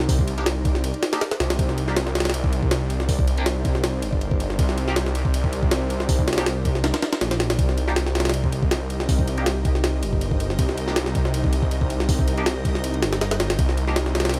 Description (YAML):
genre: drum and bass, jungle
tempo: 160 BPM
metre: 4/4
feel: swing 54% on 16ths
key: C minor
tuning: A4 = 440 Hz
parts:
  - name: detuned saw bass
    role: bass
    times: 0.0-14.4 s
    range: G1 to C2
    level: -27 LUFS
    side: equal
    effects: none
  - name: jungle sampler-style drum kit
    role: drums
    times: 0.0-14.4 s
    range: hi-hat, kick drum, ride cymbal, snare drum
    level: -25 LUFS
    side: equal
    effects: none
  - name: band-passed chord stab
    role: stabs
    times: 0.4-13.9 s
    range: Bb3 to G4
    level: -36 LUFS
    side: equal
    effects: none
  - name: backwards swelling texture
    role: texture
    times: 8.9-14.4 s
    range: Eb4 to Eb5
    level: -41 LUFS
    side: equal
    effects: none
room: little or no reverb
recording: faint mains hum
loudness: -22 LUFS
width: mono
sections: 0.0-14.4 A section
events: none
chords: 0.0 Cm7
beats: | 0.09 0.46 0.84 1.21 | 1.59 1.96 2.34 2.71 | 3.09 3.46 3.84 4.21 | 4.59 4.96 5.34 5.71 | 6.09 6.46 6.84 7.21 | 7.59 7.96 8.34 8.71 | 9.09 9.46 9.84 10.21 | 10.59 10.96 11.34 11.71 | 12.09 12.46 12.84 13.21 | 13.59 13.96 14.34